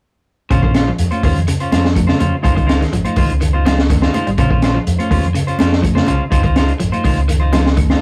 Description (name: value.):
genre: afrobeat.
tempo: 124 BPM.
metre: 4/4.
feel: straight.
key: Bb minor.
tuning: A4 = 440 Hz.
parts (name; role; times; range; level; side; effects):
electric guitar at the edge of break-up; arpeggios; 0.5-8.0 s; Db3 to G3; -24 LUFS; equal; none.
clean electric guitar; stabs; 0.5-8.0 s; Ab3 to C5; -23 LUFS; equal; none.
fingered electric bass; bass; 0.5-7.9 s; Ab1 to F2; -19 LUFS; equal; none.
crunchy breakbeat drum kit; drums; 0.5-8.0 s; hi-hat, kick drum, snare drum; -19 LUFS; equal; none.
claves; percussion; 0.5-7.9 s; none; -39 LUFS; equal; none.
congas; percussion; 0.5-8.0 s; none; -28 LUFS; equal; none.
shekere; percussion; 0.5-7.9 s; none; -29 LUFS; equal; none.
room: light reverb.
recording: rough rehearsal-room recording, warm saturation.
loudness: -15 LUFS.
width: mono.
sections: 0.5-8.0 A section.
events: none.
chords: 0.5 Bbm9; 2.4 Dbmaj9; 4.4 Bbm9; 6.3 Dbmaj9.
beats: | 0.51 0.99 1.48 1.96 | 2.44 2.93 3.41 3.90 | 4.38 4.87 5.35 5.84 | 6.32 6.80 7.29 7.78.